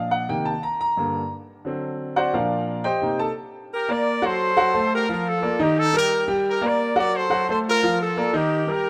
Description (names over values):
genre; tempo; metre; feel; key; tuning
latin; 176 BPM; 4/4; straight; G minor; A4 = 441 Hz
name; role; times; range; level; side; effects
clear concert grand piano; accompaniment; 0.0-8.9 s; G2 to Bb5; -25 LUFS; equal; none
brilliant horn section; melody; 3.7-8.9 s; Eb4 to D5; -24 LUFS; equal; none
room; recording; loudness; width
light reverb, studio ambience; rough home demo mix; -22 LUFS; mono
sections
0.0-3.7 A section; 3.7-8.9 B section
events
grand piano solo 0.0-3.7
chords
0.3 Cm7; 1.0 Gm; 1.7 D7; 2.3 Bb; 3.0 Cm7; 3.7 Gmadd9; 4.4 F#dim; 5.1 Bb; 5.8 Eb; 6.4 Gm; 7.1 F#dim; 7.8 Bb